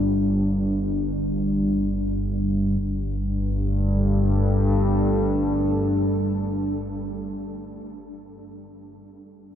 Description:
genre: dark ambient drone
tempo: free time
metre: none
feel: none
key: unclear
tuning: A4 = 440 Hz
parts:
  - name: deep dark ambient pad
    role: sustained chords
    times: 0.0-7.4 s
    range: G3 to A4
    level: -26 LUFS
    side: left 1 dB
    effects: chorus, built-in reverb
  - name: analog drone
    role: drone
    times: 0.0-7.1 s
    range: G1 to G2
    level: -23 LUFS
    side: equal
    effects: chorus
room: wet huge ambient reverb, RT60 8.0 s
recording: none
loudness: -21 LUFS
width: side -9 dB against mid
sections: 0.0-2.8 A section; 2.8-7.2 B section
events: none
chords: 0.0 G5

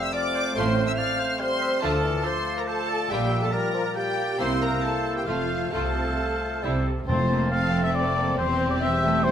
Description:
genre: quick classical-period movement for symphony orchestra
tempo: 140 BPM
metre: 3/4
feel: rubato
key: F major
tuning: A4 = 439 Hz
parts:
  - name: rich studio violin section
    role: melody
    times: 0.0-9.3 s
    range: E4 to F6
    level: -32 LUFS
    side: equal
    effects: none
  - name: clear oboe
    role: second line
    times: 0.0-9.3 s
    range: A4 to A5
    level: -34 LUFS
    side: right 1 dB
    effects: none
  - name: concert flute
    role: second line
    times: 0.0-9.3 s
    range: C6 to G6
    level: -31 LUFS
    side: left 2 dB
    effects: none
  - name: mellow clarinet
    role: second line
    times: 0.0-9.3 s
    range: F4 to F5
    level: -32 LUFS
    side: left 2 dB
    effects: none
  - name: mellow bassoon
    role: accompaniment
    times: 0.0-9.3 s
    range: E3 to C4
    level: -33 LUFS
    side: right 1 dB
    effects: none
  - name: rich chamber viola section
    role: accompaniment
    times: 0.0-9.3 s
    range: G3 to F5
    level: -31 LUFS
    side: equal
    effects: none
  - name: mellow French horn section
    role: sustained chords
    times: 0.0-9.3 s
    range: G3 to F4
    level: -32 LUFS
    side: left 3 dB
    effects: none
  - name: rich chamber violin section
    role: second line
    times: 0.6-9.3 s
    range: G3 to F5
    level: -34 LUFS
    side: left 1 dB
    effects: none
  - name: rich chamber double bass section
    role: bass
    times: 0.6-9.3 s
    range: E1 to D2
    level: -31 LUFS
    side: right 3 dB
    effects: none
  - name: warm studio cello section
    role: bass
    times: 0.6-9.3 s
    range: E2 to D3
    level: -31 LUFS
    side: right 2 dB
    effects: none
  - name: timpani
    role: percussion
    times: 7.1-7.7 s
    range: F2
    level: -31 LUFS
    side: left 1 dB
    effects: none
room: moderate scoring stage reverb, RT60 2.1 s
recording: close, detailed microphones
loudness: -22 LUFS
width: side -9 dB against mid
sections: 0.0-7.1 A section; 7.1-9.3 B section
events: none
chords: 0.0 F; 0.6 F/A; 1.8 Dm; 3.1 Gm7/Bb; 4.4 C7; 5.3 F; 5.7 F/C; 6.6 C; 7.1 F; 8.4 C/E

